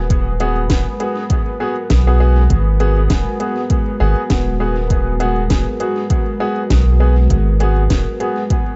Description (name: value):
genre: ambient dub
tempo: 100 BPM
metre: 4/4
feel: swing 56% on 16ths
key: G# minor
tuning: A4 = 440 Hz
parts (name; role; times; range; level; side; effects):
- deep dark ambient pad; sustained chords; 0.0-8.8 s; G#3 to B4; -27 LUFS; equal; chorus, built-in reverb
- soft dub sub bass; bass; 0.0-8.0 s; D#1 to B1; -17 LUFS; equal; none
- bubbling stepped-filter texture; texture; 0.0-8.8 s; B3; -34 LUFS; equal; none
- electronic kick drum; drums; 0.1-8.6 s; none; -20 LUFS; equal; none
- organic electronic drum kit; drums; 0.1-8.6 s; hi-hat, snare drum; -28 LUFS; equal; overdrive, dub echo
- clear upright piano; stabs; 0.4-8.4 s; B3 to G#4; -24 LUFS; equal; dub echo
room: light reverb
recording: nothing above 7.8 kHz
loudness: -16 LUFS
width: mono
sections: 0.0-8.8 A section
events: none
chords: 0.0 G#m7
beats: | 0.10 0.70 1.30 1.90 | 2.50 3.10 3.70 4.30 | 4.90 5.50 6.10 6.70 | 7.30 7.90 8.50